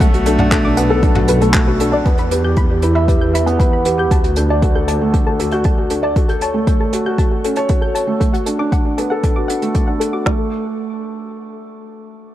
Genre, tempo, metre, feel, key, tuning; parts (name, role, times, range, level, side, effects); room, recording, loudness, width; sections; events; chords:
piano and strings electronica; 117 BPM; 4/4; straight; B minor; A4 = 440 Hz
rich cello; melody; 0.0-1.5 s; A3; -23 LUFS; left 2 dB; tape echo
soft round pluck; arpeggios; 0.0-10.5 s; A4 to G6; -24 LUFS; left 2 dB; chorus, sidechain pumping, tape echo
felt-muted upright piano; riff; 0.0-12.3 s; A3 to E5; -18 LUFS; right 1 dB; tape echo
clear studio double bass section; bass; 0.0-6.1 s; B1 to E2; -19 LUFS; equal; sidechain pumping
organic electronic drum kit; drums; 0.0-10.4 s; kick drum, snare drum; -16 LUFS; equal; overdrive
vintage brush drum kit; drums; 0.0-10.1 s; handclaps, hi-hat, toms; -24 LUFS; right 1 dB
light reverb, studio reverb; dark, warm production; -13 LUFS; side -13 dB against mid
0.0-2.1 A section; 2.1-10.3 B section; 10.3-12.3 C section
drop 0.0-2.1
0.0 Bm7; 2.1 Em; 4.1 D; 6.2 F#m; 8.2 Bm7; 10.3 N.C.